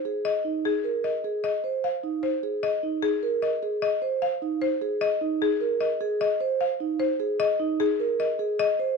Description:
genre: classical, minimalist pattern music.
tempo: 151 BPM.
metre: 6/4.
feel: straight.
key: unclear.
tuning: A4 = 444 Hz.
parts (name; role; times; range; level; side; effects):
buzzing marimba with medium hard mallets; melody; 0.0-8.9 s; Ab4 to F5; -26 LUFS; left 6 dB; none.
vibraphone with soft mallets; arpeggios; 0.1-9.0 s; Eb4 to C5; -27 LUFS; right 5 dB; none.
room: moderate large studio reverb, RT60 1.1 s.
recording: dark, warm production, nothing above 10.6 kHz.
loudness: -24 LUFS.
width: side -4 dB against mid.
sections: 0.0-9.0 A section.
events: none.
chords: 0.0 Bb7sus4.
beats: 0.25 0.65 1.04 | 1.44 1.84 2.24 2.63 3.03 3.43 | 3.83 4.22 4.62 5.02 5.41 5.81 | 6.21 6.61 7.00 7.40 7.80 8.20 | 8.59.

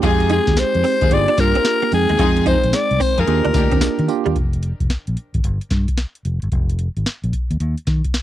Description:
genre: R&B, new jack swing.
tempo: 111 BPM.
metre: 4/4.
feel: swing 65% on 16ths.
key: F dorian.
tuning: A4 = 442 Hz.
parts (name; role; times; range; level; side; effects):
tine electric piano; accompaniment; 0.0-4.4 s; Ab3 to G5; -22 LUFS; right 13 dB; none.
direct-recorded clean electric guitar; riff; 0.0-4.3 s; G3 to F4; -24 LUFS; right 6 dB; ensemble chorus.
rich studio string section; stabs; 0.0-3.7 s; D4 to Bb4; -27 LUFS; left 4 dB; tape echo.
fingered electric bass; bass; 0.0-8.0 s; F1 to Eb3; -20 LUFS; equal; none.
booming analog drum machine; drums; 0.0-8.2 s; hi-hat, kick drum, snare drum, tambourine; -20 LUFS; equal; none.
cowbell; percussion; 0.0-4.0 s; none; -34 LUFS; left 8 dB; none.
raspy alto saxophone; melody; 0.1-4.1 s; Ab4 to D5; -18 LUFS; left 3 dB; none.
room: little or no reverb.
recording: dry, close 1970s-style studio recording.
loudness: -16 LUFS.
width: side -13 dB against mid.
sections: 0.0-4.4 A section; 4.4-8.2 B section.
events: none.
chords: 0.0 Fm7; 1.1 Gm7; 1.9 Fm7; 3.3 Ebmaj7; 4.4 N.C..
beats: | 0.03 0.57 1.11 1.65 | 2.19 2.73 3.27 3.82 | 4.36 4.90 5.44 5.98 | 6.52 7.06 7.60 8.14.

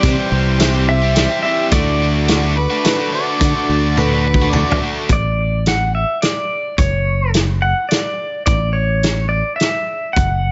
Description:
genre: folk rock and heartland rock.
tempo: 107 BPM.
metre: 3/4.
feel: straight.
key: D mixolydian.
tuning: A4 = 440 Hz.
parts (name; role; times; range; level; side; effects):
pedal steel guitar; melody; 0.0-10.5 s; C#5 to F#5; -23 LUFS; equal; analog delay.
picked steel-string acoustic guitar; accompaniment; 0.0-5.1 s; C3 to G4; -27 LUFS; equal; none.
warm grand piano; accompaniment; 0.0-5.1 s; F#4 to F#5; -31 LUFS; equal; none.
clear symphonic string section; sustained chords; 0.0-5.1 s; G4 to D6; -35 LUFS; equal; none.
overdriven electric guitar; riff; 0.0-5.1 s; C3 to G4; -23 LUFS; equal; none.
fingered electric bass; bass; 0.0-10.5 s; F#1 to D3; -20 LUFS; equal; none.
loose indie drum kit; drums; 0.0-10.3 s; hi-hat, kick drum, snare drum, toms; -20 LUFS; equal; none.
tambourine; percussion; 0.0-5.0 s; none; -35 LUFS; equal; none.
overdriven harmonica; second line; 2.6-4.8 s; B4 to D5; -23 LUFS; equal; none.
room: light reverb, small room reverb.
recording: nothing above 7.7 kHz.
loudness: -16 LUFS.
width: mono.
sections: 0.0-5.1 A section; 5.1-10.5 B section.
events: drum fill 4.0-5.1.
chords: 0.0 C; 1.7 D; 5.1 Asus4; 6.8 D/F#; 8.5 A5.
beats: | 0.04 0.60 1.16 | 1.72 2.28 2.85 | 3.41 3.97 4.53 | 5.09 5.66 6.22 | 6.78 7.35 7.91 | 8.47 9.04 9.60 | 10.16.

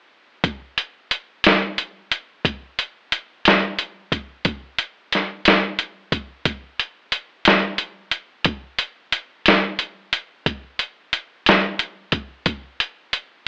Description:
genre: blues.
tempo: 60 BPM (dotted quarters).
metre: 12/8.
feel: straight.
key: none.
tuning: none.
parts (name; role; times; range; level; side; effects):
lo-fi sampler-style drum kit; drums; 0.4-13.3 s; hi-hat, kick drum, snare drum; -16 LUFS; equal; none.
room: wet studio reverb, RT60 0.8 s.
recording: AM radio sound.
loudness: -19 LUFS.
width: side -33 dB against mid.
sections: 0.4-13.5 A section.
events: none.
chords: none.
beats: | 0.44 1.44 2.45 3.45 | 4.45 5.46 6.46 7.46 | 8.46 9.46 10.46 11.46 | 12.46.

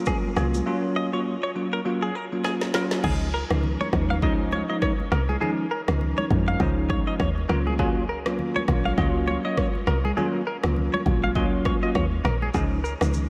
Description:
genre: afrobeats.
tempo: 101 BPM.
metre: 4/4.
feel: swing 58% on 16ths.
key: Db major.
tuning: A4 = 445 Hz.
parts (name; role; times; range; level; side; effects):
bell-like tine electric piano; accompaniment; 0.0-13.3 s; F3 to F4; -29 LUFS; equal; ensemble chorus.
direct-recorded clean electric guitar; riff; 0.1-12.9 s; Ab4 to F5; -32 LUFS; equal; analog chorus, tape echo.
afro-pop drum kit; drums; 0.1-13.3 s; crash cymbal, kick drum, rim click, shaker, snare drum; -31 LUFS; equal; overdrive.
congas; percussion; 0.1-13.3 s; none; -37 LUFS; equal; none.
woody log drum bass; bass; 0.4-13.3 s; Bb1 to F2; -28 LUFS; equal; none.
room: moderate huge ambient reverb, RT60 4.8 s.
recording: dreamy mix soaked in reverb.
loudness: -24 LUFS.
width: mono.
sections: 0.0-3.0 A section; 3.0-13.3 B section.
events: drum fill 2.4-3.0; hi-hats muted 3.0-12.5.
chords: 0.0 Ebm7 (rootless); 3.0 Dbadd9; 7.5 Ebm7; 12.5 Dbadd9.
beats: 0.07 | 0.66 1.26 1.85 2.44 | 3.04 3.63 4.23 4.82 | 5.42 6.01 6.60 7.20 | 7.79 8.38 8.98 9.57 | 10.17 10.76 11.36 11.95 | 12.54 13.14.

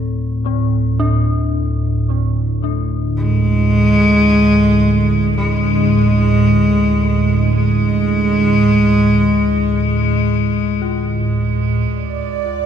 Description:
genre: dark ambient drone.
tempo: 55 BPM.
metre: 4/4.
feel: straight.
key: unclear.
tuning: A4 = 440 Hz.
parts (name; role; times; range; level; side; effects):
dark detuned synth bell; arpeggios; 0.0-12.7 s; C4 to A4; -26 LUFS; left 5 dB; chorus, phaser, ping-pong delay.
deep rumbling drone; drone; 0.0-12.7 s; D2 to A2; -16 LUFS; right 1 dB; built-in reverb, phaser.
bright cello; melody; 3.2-10.8 s; G#3; -15 LUFS; equal; ping-pong delay.
bubbling stepped-filter texture; texture; 12.1-12.7 s; D5; -21 LUFS; right 12 dB; chorus, built-in reverb.
room: light reverb.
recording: none.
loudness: -13 LUFS.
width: side -8 dB against mid.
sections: 0.0-11.9 A section.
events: fade-out on synth bell 0.0-11.9.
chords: 0.0 D5; 3.2 Dm.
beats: 1.00 2.09 | 3.18 4.27 5.36 6.45 | 7.54 8.63 9.72 10.81 | 11.91.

